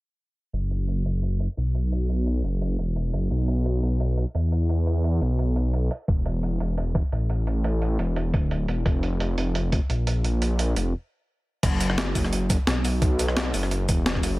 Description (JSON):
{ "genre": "liquid drum and bass", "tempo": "173 BPM", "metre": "4/4", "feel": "swing 53% on 16ths", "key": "unclear", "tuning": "A4 = 440 Hz", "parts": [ { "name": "swelling detuned saw bass", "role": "bass", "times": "0.5-14.4 s", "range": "D1 to E2", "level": "-23 LUFS", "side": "equal", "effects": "none" }, { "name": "breakbeat sampler-style drum kit", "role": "drums", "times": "0.5-14.3 s", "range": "crash cymbal, hi-hat, rim click, shaker, snare drum", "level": "-29 LUFS", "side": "right 1 dB", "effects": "none" }, { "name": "electronic kick drum", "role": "drums", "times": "6.1-14.2 s", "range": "none", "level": "-24 LUFS", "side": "equal", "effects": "none" } ], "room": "digital ambience", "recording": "low-pass filter", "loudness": "-22 LUFS", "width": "side -20 dB against mid", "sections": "0.5-11.6 A section; 11.6-14.4 B section", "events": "filter sweep 0.5-11.6; stop 10.9-11.6; drop 11.6-14.4", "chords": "none", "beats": "| 0.53 0.88 1.23 1.57 | 1.92 2.27 2.61 2.96 | 3.31 3.65 4.00 4.35 | 4.70 5.04 5.39 5.74 | 6.08 6.43 6.78 7.12 | 7.47 7.82 8.16 8.51 | 8.86 9.20 9.55 9.90 | 10.24 10.59 10.94 11.29 | 11.63 11.98 12.32 12.67 | 13.02 13.37 13.71 14.06" }